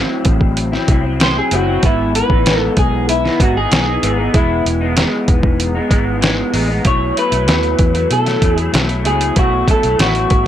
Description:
indie pop, bedroom pop; 96 BPM; 4/4; straight; E major; A4 = 439 Hz
electric guitar through a small old amp; accompaniment; 0.0-10.5 s; G#2 to E4; -19 LUFS; left 2 dB; analog chorus, vibrato effect
lo-fi sampler-style drum kit; drums; 0.2-10.5 s; hi-hat, kick drum, snare drum; -15 LUFS; equal; overdrive
vintage muted fingered electric bass; bass; 0.3-10.5 s; E1 to B2; -20 LUFS; equal
electric guitar through a small old amp; melody; 1.2-10.5 s; E4 to C#5; -17 LUFS; equal; wide subtle chorus, analog delay
light reverb; -12 LUFS; side -11 dB against mid
0.0-6.9 A section; 6.9-10.5 B section
clean electric guitar solo 0.0-6.9
0.0 Am6; 1.8 Emaj7/G#; 4.3 Emaj7; 6.9 B7sus4
0.58 1.20 | 1.83 2.46 3.09 3.71 | 4.34 4.97 5.60 6.23 | 6.86 7.48 8.11 8.74 | 9.37 10.00

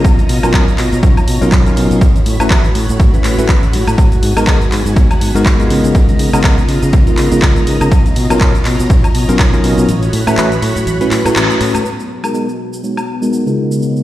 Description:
filtered disco house; 122 BPM; 4/4; swing 57% on 16ths; G# dorian; A4 = 440 Hz
bright tine electric piano; accompaniment; 0.0-14.0 s; C#3 to C#5; -16 LUFS; equal; medium stereo tremolo, phaser, sidechain pumping, low-pass filter
string machine, full ensemble; sustained chords; 0.0-14.0 s; B3 to B5; -22 LUFS; equal; ensemble chorus, vintage 12-bit sampler grit, sidechain pumping, low-pass filter
overdriven fingered electric bass; bass; 0.0-11.8 s; G#1 to C#3; -16 LUFS; equal; tube saturation, sidechain pumping, low-pass filter
electronic kick drum; drums; 0.0-9.5 s; -12 LUFS; equal; overdrive, small room ambience
house drum kit; drums; 0.0-14.0 s; cabasa, handclaps, hi-hat, woodblock; -20 LUFS; equal; sidechain pumping on hats, small room ambience, sidechain pumping on perc
light reverb, digital ambience; played on a big sound system in a bare room, stone room reverb; -10 LUFS; side -14 dB against mid
0.0-11.9 A section; 11.9-14.0 B section
kick drops out 9.9-11.9; band accent 11.4; filter sweep 11.9-14.0
0.0 Bmaj9#11; 2.0 A69; 4.0 G#m7; 5.7 C#13; 7.9 Bmaj9#11; 9.9 A69; 11.9 G#m7
| 0.05 0.54 1.03 1.52 | 2.02 2.51 3.00 3.49 | 3.98 4.47 4.97 5.46 | 5.95 6.44 6.93 7.42 | 7.92 8.41 8.90 9.39 | 9.88 10.38 10.87 11.36 | 11.85 12.34 12.83 13.33 | 13.82

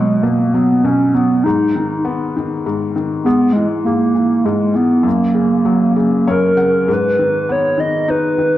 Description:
children's music, lullaby; 100 BPM; 3/4; straight; A4 = 440 Hz
reedy FM lead; melody; 0.0-8.6 s; G#3 to D#5; -14 LUFS; right 1 dB; chorus
felt-muted upright piano; accompaniment; 0.0-8.6 s; F#2 to F#5; -18 LUFS; left 2 dB
wet recital hall reverb, RT60 1.7 s; dark, warm production; -13 LUFS; side -13 dB against mid
0.0-6.9 A section; 6.9-8.6 B section
felt piano fill 6.0-6.9
0.0 B5; 1.4 G#m; 3.3 E/G#; 5.1 F#; 6.9 G#m
0.24 0.84 | 1.45 2.05 2.65 | 3.25 3.85 4.45 | 5.06 5.67 6.28 | 6.89 7.49 8.09

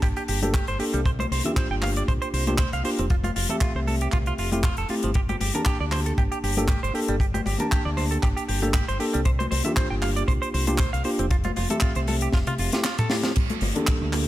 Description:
nu-disco, nu disco; 117 BPM; 4/4; swing 54% on 16ths; G dorian; A4 = 443 Hz
mellow tine electric piano; accompaniment; 0.0-14.3 s; A3 to A5; -29 LUFS; equal; sidechain pumping, digital delay
direct-recorded clean electric guitar; riff; 0.0-13.3 s; F3 to G5; -30 LUFS; right 3 dB; wide subtle chorus, vintage 12-bit sampler grit, digital delay
fingered electric bass with an envelope filter; bass; 0.0-14.3 s; F1 to D2; -27 LUFS; equal
kick drum; drums; 0.0-14.0 s; -24 LUFS; equal; studio reverb
tight funk drum kit; drums; 0.0-14.2 s; crash cymbal, handclaps, hi-hat, snare drum, toms; -30 LUFS; left 1 dB; studio reverb
congas; percussion; 0.4-14.2 s; -33 LUFS; left 3 dB
soft round pluck; arpeggios; 13.4-14.2 s; G3 to D4; -33 LUFS; right 2 dB; chorus, sidechain pumping, digital delay
studio reverb; -22 LUFS; side -14 dB against mid
0.0-14.3 A section
drum fill 12.3-13.4
0.0 Gmadd9; 1.1 C7sus4; 3.1 Fmaj7; 5.2 Gmadd9; 9.3 C7sus4; 11.3 Fmaj7; 13.4 Gmadd9
0.03 0.54 | 1.05 1.57 2.08 2.59 | 3.10 3.62 4.13 4.64 | 5.16 5.67 6.18 6.69 | 7.21 7.72 8.23 8.74 | 9.26 9.77 10.28 10.80 | 11.31 11.82 12.34 12.85 | 13.36 13.87

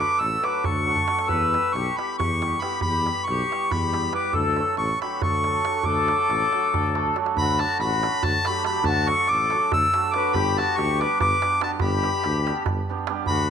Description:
balkan folk, Balkan wedding band; 279 BPM (eighths); 7/8; straight; D major; A4 = 440 Hz
warm harmonica; melody; 0.0-13.5 s; A5 to E6; -23 LUFS; equal
accordion; second line; 0.0-13.5 s; F#4 to B4; -28 LUFS; left 10 dB
hammered dulcimer; accompaniment; 0.0-13.3 s; F#3 to G4; -30 LUFS; right 9 dB
darbuka; percussion; 0.0-13.4 s; -29 LUFS; right 3 dB
mellow tuba; bass; 0.2-13.5 s; G1 to E2; -28 LUFS; equal
moderate echo chamber reverb, RT60 1.7 s, small room ambience; 1960s-style stereo with parts hard left and right; -20 LUFS; side -7 dB against mid
0.0-7.4 A section; 7.4-13.5 B section
speeding up 0.0-13.5; drum fill 0.7-1.3, 7.0-7.4
0.0 D; 1.3 Em; 4.3 D; 10.3 G
0.19 0.41 0.63 0.85 1.07 | 1.29 1.51 1.73 1.94 2.16 2.38 2.60 | 2.82 3.04 3.25 3.47 3.69 3.91 4.12 | 4.34 4.56 4.77 4.99 5.21 5.42 5.64 | 5.86 6.07 6.29 6.50 6.72 6.93 7.15 | 7.36 7.58 7.79 8.00 8.22 8.43 8.64 | 8.86 9.07 9.28 9.49 9.71 9.92 10.13 | 10.34 10.55 10.76 10.97 11.19 11.39 11.61 | 11.81 12.03 12.23 12.45 12.65 12.86 13.07 | 13.28 13.49

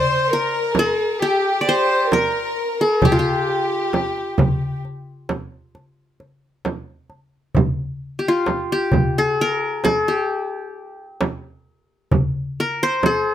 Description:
Arabic maqam ensemble; 132 BPM (eighths); 10/8; straight; G maqam bayati; A4 = 440 Hz
qanun; melody; 0.0-13.3 s; F4 to D5; -19 LUFS; left 2 dB
dark violin; second line; 0.0-4.8 s; G4 to C5; -24 LUFS; left 2 dB
warm chamber violin section; second line; 0.0-4.8 s; G4 to C5; -26 LUFS; right 3 dB
darbuka; percussion; 0.7-13.2 s; -23 LUFS; left 2 dB
frame drum; percussion; 0.7-13.2 s; -21 LUFS; right 4 dB
light reverb; -18 LUFS; side -11 dB against mid
0.0-7.6 A section; 7.6-13.3 B section
0.30 0.76 1.21 1.67 2.12 2.57 | 3.03 3.48 3.94 4.39 4.84 5.30 5.75 6.21 6.66 7.12 | 7.57 8.03 8.48 8.94 9.39 9.85 10.30 10.76 11.21 11.67 | 12.12 12.58 13.03

